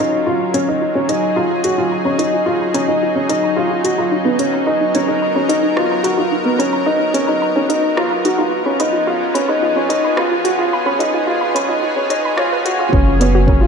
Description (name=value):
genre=piano and strings electronica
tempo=109 BPM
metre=4/4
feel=straight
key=F# major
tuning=A4 = 440 Hz
part: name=lush unison pad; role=sustained chords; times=0.0-13.7 s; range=E#3 to A#4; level=-20 LUFS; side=equal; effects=chorus, sidechain pumping
part: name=soft round pluck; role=arpeggios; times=0.0-13.7 s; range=D#4 to B5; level=-24 LUFS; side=right 1 dB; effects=chorus, sidechain pumping, ping-pong delay
part: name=dark upright piano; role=riff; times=0.0-13.7 s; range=B3 to F#4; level=-16 LUFS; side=equal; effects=ping-pong delay
part: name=organic electronic drum kit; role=drums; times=0.5-13.3 s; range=hi-hat, rim click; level=-26 LUFS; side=equal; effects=high-pass filter on hats, high-pass filter on snare, high-pass filter on room
part: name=round analog bass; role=bass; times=12.9-13.7 s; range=F#1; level=-15 LUFS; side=equal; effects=sidechain pumping
part: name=electronic kick drum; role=drums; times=12.9-13.6 s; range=none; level=-14 LUFS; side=equal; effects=none
room=wet lush hall reverb, RT60 1.8 s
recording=dark, warm production, high-pass filter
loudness=-14 LUFS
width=side -6 dB against mid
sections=0.0-12.9 A section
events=build-up 0.0-12.9; filter sweep on synth arpeggio sound 0.0-12.9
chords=0.0 F#maj7; 4.1 Bmaj7; 8.5 C#7; 12.9 F#